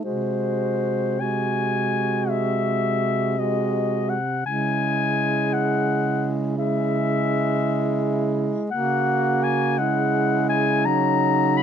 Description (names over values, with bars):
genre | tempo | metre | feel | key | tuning
classical, lyrical piece for single-reed quartet | 56 BPM (dotted quarters) | 12/8 | rubato | unclear | A4 = 440 Hz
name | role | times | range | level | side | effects
clear clarinet | melody | 0.0-11.6 s | B#4 to B5 | -24 LUFS | left 8 dB | none
mellow alto saxophone | second line | 0.0-11.6 s | D#4 to F#4 | -27 LUFS | right 13 dB | none
warm tenor saxophone | accompaniment | 0.0-11.6 s | F#3 to A#3 | -26 LUFS | left 1 dB | none
dark baritone saxophone | bass | 0.0-11.6 s | B#2 to C#3 | -26 LUFS | right 2 dB | none
room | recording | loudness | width
light reverb | close, detailed microphones | -20 LUFS | side -8 dB against mid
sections
0.0-11.6 A section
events
none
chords
0.1 G#7/B#; 4.5 C#m; 8.7 F#7/C#